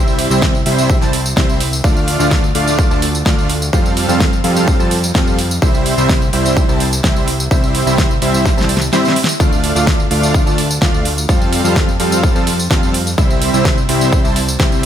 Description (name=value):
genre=EDM, festival progressive house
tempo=127 BPM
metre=4/4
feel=straight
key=C major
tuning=A4 = 440 Hz
part: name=dense compressed supersaw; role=riff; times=0.0-14.8 s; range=G3 to A5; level=-16 LUFS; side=right 1 dB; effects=sidechain pumping, tape echo
part: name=fat analog bass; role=bass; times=0.0-14.9 s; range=C2 to F2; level=-19 LUFS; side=equal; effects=sidechain pumping
part: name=pop drum kit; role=drums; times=0.1-14.9 s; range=hi-hat, snare drum, tambourine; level=-20 LUFS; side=right 1 dB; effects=small room reverb
part: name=electronic kick drum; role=drums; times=0.4-14.7 s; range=none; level=-15 LUFS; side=equal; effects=small room reverb
room=light reverb, digital ambience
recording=none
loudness=-12 LUFS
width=side -10 dB against mid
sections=0.0-14.9 A section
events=drum fill 8.5-9.4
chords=0.0 C; 1.8 Dm; 3.7 Fadd9; 5.6 C; 9.4 Dm; 11.3 Fadd9; 13.2 C